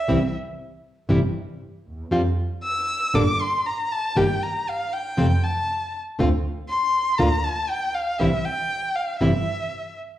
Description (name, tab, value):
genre	tango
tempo	118 BPM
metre	4/4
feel	rubato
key	unclear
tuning	A4 = 441 Hz
part	warm violin	second line	0.0-9.9 s	E5 to E6	-24 LUFS	left 1 dB	none
part	nylon-string guitar	accompaniment	0.1-9.3 s	C3 to A4	-23 LUFS	left 1 dB	none
part	warm double bass	bass	0.1-9.4 s	G1 to F2	-25 LUFS	right 1 dB	none
room	wet large studio reverb, RT60 1.1 s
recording	heard from further back in the room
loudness	-21 LUFS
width	side -13 dB against mid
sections	0.0-10.2 A section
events	violin solo 0.0-10.2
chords	0.1 C; 2.1 N.C.; 3.1 Gmadd9; 4.2 Eb/G; 5.2 F; 6.2 D7(no3); 7.2 Bb/D; 8.2 C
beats	| 0.09 0.59 1.10 1.61 | 2.12 2.63 3.15 3.66 | 4.17 4.67 5.18 5.68 | 6.19 6.69 7.19 7.70 | 8.20 8.70 9.21 9.73